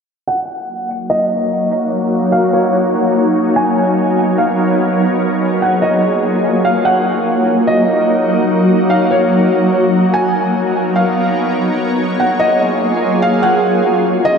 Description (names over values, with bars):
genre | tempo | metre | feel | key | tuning
hip hop | 146 BPM | 4/4 | half-time | Eb minor | A4 = 440 Hz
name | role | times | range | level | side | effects
felt-muted upright piano | melody | 0.3-14.4 s | Db5 to Ab5 | -17 LUFS | equal | low-pass filter, analog delay
shimmering ambient pad | sustained chords | 0.9-14.4 s | Gb3 to Db5 | -13 LUFS | equal | chorus, built-in reverb, low-pass filter
room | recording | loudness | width
wet lush hall reverb, RT60 2.9 s | dreamy mix soaked in reverb | -12 LUFS | side -6 dB against mid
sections
0.3-13.4 A section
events
filter sweep 0.3-13.4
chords
0.3 Ebm7; 3.6 Db13; 5.2 Gbmaj9; 6.8 Ebm7; 10.1 Db13; 11.8 Gbmaj9; 13.4 Ebm7